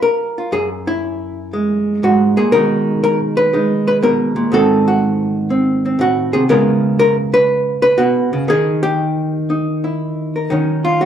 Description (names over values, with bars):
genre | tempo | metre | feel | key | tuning
solo jazz | 120 BPM | 4/4 | swing 68% on 8ths, rubato | unclear | A4 = 440 Hz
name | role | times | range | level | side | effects
archtop guitar, miked and amplified | solo | 0.0-11.1 s | F#2 to B4 | -13 LUFS | equal | none
room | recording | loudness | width
wet club reverb, RT60 0.9 s | heard from further back in the room, lossy compression artefacts | -13 LUFS | side -9 dB against mid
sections
0.0-10.5 A section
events
none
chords
0.0 F#maj7; 0.5 F#7sus2; 2.5 B6; 4.5 G#7b9; 6.5 C#m7; 8.5 D#; 10.5 Ebm7